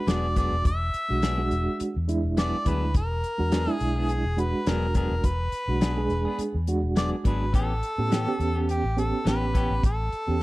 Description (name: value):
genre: straight-eighth soul blues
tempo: 104 BPM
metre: 4/4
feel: swing 55% on 16ths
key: E mixolydian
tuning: A4 = 440 Hz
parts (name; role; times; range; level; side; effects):
- warm harmonica; melody; 0.0-10.4 s; G4 to E5; -30 LUFS; equal; overdrive, slapback echo
- mellow reed electric piano; accompaniment; 0.0-10.4 s; G#3 to G#4; -29 LUFS; right 3 dB; fast tremolo
- clean electric guitar; stabs; 0.1-10.4 s; E3 to G#4; -34 LUFS; left 4 dB; spring reverb
- vintage muted fingered electric bass; bass; 0.1-10.4 s; E1 to A2; -27 LUFS; equal; none
- warm soul drum kit; drums; 0.1-10.3 s; hi-hat, kick drum, snare drum; -25 LUFS; equal; none
room: studio ambience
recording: none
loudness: -23 LUFS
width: side -19 dB against mid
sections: 0.0-10.4 A section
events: none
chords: 0.0 E9; 7.5 A9